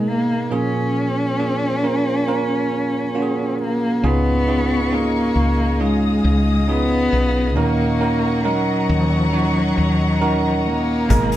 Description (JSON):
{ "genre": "pop ballad", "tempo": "68 BPM", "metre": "4/4", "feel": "straight", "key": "Eb minor", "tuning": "A4 = 444 Hz", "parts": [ { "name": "dark cello", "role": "melody", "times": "0.0-11.4 s", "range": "Gb3 to Db4", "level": "-20 LUFS", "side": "left 1 dB", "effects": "none" }, { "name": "bell-like tine electric piano", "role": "accompaniment", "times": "0.0-11.4 s", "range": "Ab2 to Db5", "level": "-21 LUFS", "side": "right 3 dB", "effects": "none" }, { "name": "warm studio string section", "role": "sustained chords", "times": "4.0-11.4 s", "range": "Ab4 to Eb6", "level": "-27 LUFS", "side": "left 4 dB", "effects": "none" }, { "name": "woody fretless electric bass", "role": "bass", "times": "4.0-11.4 s", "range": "Ab1 to Eb2", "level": "-21 LUFS", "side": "left 1 dB", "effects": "none" }, { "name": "direct-recorded clean electric guitar", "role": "arpeggios", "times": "11.1-11.4 s", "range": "Ab2", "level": "-24 LUFS", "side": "left 3 dB", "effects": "none" }, { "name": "unplugged drum kit", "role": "drums", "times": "11.1-11.4 s", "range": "hi-hat, kick drum", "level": "-18 LUFS", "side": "equal", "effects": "none" } ], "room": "moderate large studio reverb, RT60 1.2 s", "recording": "band playing live in one room", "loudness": "-16 LUFS", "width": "side -13 dB against mid", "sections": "0.0-4.0 A section; 4.0-11.4 B section", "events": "none", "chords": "0.0 Abmadd9; 0.5 Bbm7; 4.0 Dbadd9; 7.6 Ebm7" }